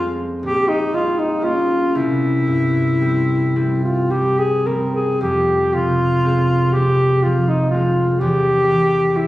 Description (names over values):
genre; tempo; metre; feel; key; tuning
classical, romantic duo for alto saxophone and harp; 36-43 BPM (dotted quarters); 6/8; rubato; F minor; A4 = 440 Hz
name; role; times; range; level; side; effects
clear alto saxophone; melody; 0.0-9.3 s; Eb4 to Bb4; -18 LUFS; left 1 dB; none
concert harp; accompaniment; 0.0-9.3 s; Bb1 to Db4; -19 LUFS; right 1 dB; none
room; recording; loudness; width
light reverb; recorded on a phone in the room, studio reverb; -15 LUFS; side -16 dB against mid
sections
0.0-9.3 A section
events
none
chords
0.4 Gdim/Bb; 1.9 C; 5.2 Fm; 8.2 C/E